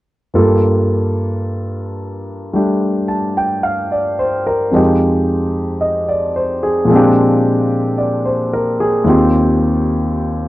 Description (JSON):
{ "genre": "jazz", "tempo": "55 BPM", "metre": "4/4", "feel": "swing 66% on 8ths", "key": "G minor", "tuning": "A4 = 438 Hz", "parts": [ { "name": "warm grand piano", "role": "accompaniment", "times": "0.3-10.5 s", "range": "Eb2 to A5", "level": "-13 LUFS", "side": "equal", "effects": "none" } ], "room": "moderate booth ambience, RT60 0.2 s", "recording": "dry, close 1970s-style studio recording", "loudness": "-13 LUFS", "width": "side -16 dB against mid", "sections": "0.3-10.5 A section", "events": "none", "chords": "0.3 Gm9; 4.7 Fm7; 6.9 Bb13; 9.1 Eb6" }